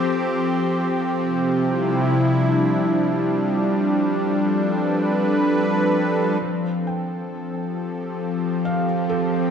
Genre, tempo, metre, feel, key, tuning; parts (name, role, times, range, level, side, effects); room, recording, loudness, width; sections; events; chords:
ambient; 67 BPM; 3/4; straight; F lydian; A4 = 440 Hz
warm analog pad; sustained chords; 0.0-9.5 s; C3 to B4; -20 LUFS; equal; chorus
bowed-like drone; drone; 0.0-9.5 s; F3 to C4; -25 LUFS; equal; built-in reverb
felt-muted upright piano; arpeggios; 6.4-9.5 s; F3 to G5; -29 LUFS; left 1 dB; diffuse ambient delay
wet scoring stage reverb, RT60 2.1 s; -19 LUFS; side -7 dB against mid
0.0-6.4 A section; 6.4-9.5 B section
fade-in on analog synth pad 6.4-9.5; fade-in on felt piano 6.4-9.5
0.0 F; 1.0 C6; 3.7 G9; 6.4 F